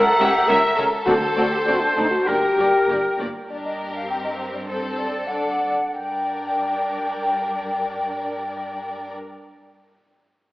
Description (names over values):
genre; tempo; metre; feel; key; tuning
quick classical-period movement for symphony orchestra; 91-106 BPM; 2/4; rubato; G minor; A4 = 440 Hz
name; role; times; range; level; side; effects
clear oboe; second line; 0.0-3.2 s; Bb4 to E5; -24 LUFS; equal; none
large flute ensemble; second line; 0.0-9.1 s; C5 to Bb5; -24 LUFS; equal; none
rich studio violin section; second line; 0.0-9.1 s; G4 to F#5; -28 LUFS; left 1 dB; none
clear French horn section; sustained chords; 0.0-3.2 s; D4 to Bb4; -21 LUFS; left 1 dB; none
rich studio violin section; melody; 0.2-9.1 s; A4 to E5; -32 LUFS; left 2 dB; none
rich studio viola section; accompaniment; 0.2-9.1 s; Bb3 to Bb4; -31 LUFS; right 1 dB; none
clear studio double bass section; bass; 0.2-3.3 s; G1 to D2; -35 LUFS; right 1 dB; none
rich symphonic cello section; bass; 0.2-9.1 s; C#2 to G2; -34 LUFS; right 1 dB; none
timpani; percussion; 1.1-1.9 s; D3; -35 LUFS; equal; none
room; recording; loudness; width
wet concert hall reverb, RT60 1.8 s; AM radio sound; -19 LUFS; side -18 dB against mid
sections
0.0-3.5 A section; 3.5-5.9 B section; 5.9-8.5 C section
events
slowing down 2.9-5.9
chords
0.0 A13b9/C#; 1.1 D5; 2.3 Gm; 3.5 C5/G; 5.9 Gm